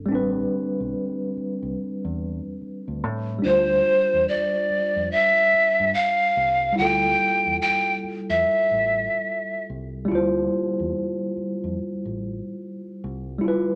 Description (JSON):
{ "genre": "R&B, neo-soul", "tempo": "72 BPM", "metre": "4/4", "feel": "swing 63% on 16ths", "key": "unclear", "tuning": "A4 = 440 Hz", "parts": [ { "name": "mellow tine electric piano", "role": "accompaniment", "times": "0.0-13.8 s", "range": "G3 to C5", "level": "-29 LUFS", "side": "equal", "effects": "none" }, { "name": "deep dub fingered electric bass", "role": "bass", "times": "0.0-13.4 s", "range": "G1 to A2", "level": "-35 LUFS", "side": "equal", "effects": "none" }, { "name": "breathy pan flute", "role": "melody", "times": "3.4-9.7 s", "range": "C5 to G5", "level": "-21 LUFS", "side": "equal", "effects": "none" } ], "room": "moderate large studio reverb, RT60 1.2 s", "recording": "none", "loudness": "-23 LUFS", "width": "mono", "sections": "0.0-13.8 A section", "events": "none", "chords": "0.0 Am11; 3.4 Dm11" }